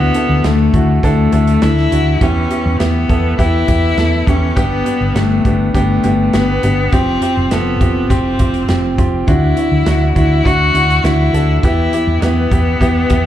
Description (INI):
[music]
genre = piano-driven pop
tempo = 102 BPM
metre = 4/4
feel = straight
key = unclear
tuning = A4 = 440 Hz
[part]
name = clear cello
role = melody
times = 0.0-13.3 s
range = A3 to F#4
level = -17 LUFS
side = left 4 dB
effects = slapback echo
[part]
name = clear upright piano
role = accompaniment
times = 0.0-13.3 s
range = G2 to A4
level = -18 LUFS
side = right 1 dB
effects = slapback echo
[part]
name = hollow-body short-scale fingered electric bass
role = bass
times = 0.0-13.3 s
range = F1 to E2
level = -15 LUFS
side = equal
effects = none
[part]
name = natural country drum kit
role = drums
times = 0.1-13.2 s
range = hi-hat, kick drum, snare drum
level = -18 LUFS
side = equal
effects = none
[sound]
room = little or no reverb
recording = live gig heard through the venue's PA, club ambience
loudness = -11 LUFS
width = side -12 dB against mid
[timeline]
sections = 0.0-13.3 A section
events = none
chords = 0.0 Dadd9; 2.2 Em; 4.6 G; 6.9 Fsus2; 9.3 Dadd9; 11.6 Em